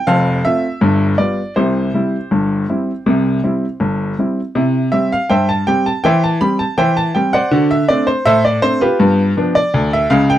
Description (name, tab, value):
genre	ragtime piano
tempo	81 BPM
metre	2/4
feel	straight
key	C major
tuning	A4 = 441 Hz
part	clear upright piano	solo	0.0-10.4 s	F1 to B5	-13 LUFS	equal	none
room	light reverb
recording	dry, close 1970s-style studio recording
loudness	-13 LUFS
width	side -12 dB against mid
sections	0.0-4.6 A section; 4.6-10.4 A section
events	none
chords	0.1 F; 0.8 G7; 1.6 C; 6.0 C/E; 7.5 D7; 9.0 G7